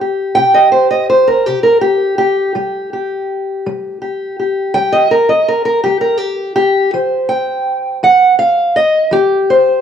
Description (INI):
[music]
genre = acoustic country blues, solo or duo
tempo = 55 BPM (dotted quarters)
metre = 12/8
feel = straight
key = unclear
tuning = A4 = 438 Hz
[part]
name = fingerpicked steel-string acoustic guitar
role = solo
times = 0.0-9.8 s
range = C3 to G5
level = -11 LUFS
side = equal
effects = none
[sound]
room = moderate large studio reverb, RT60 1.2 s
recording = band playing live in one room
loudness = -11 LUFS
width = side -8 dB against mid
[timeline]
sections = 0.0-9.8 A section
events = steel-string acoustic guitar solo 0.0-9.8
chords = 0.0 C5; 2.6 N.C.; 6.9 F5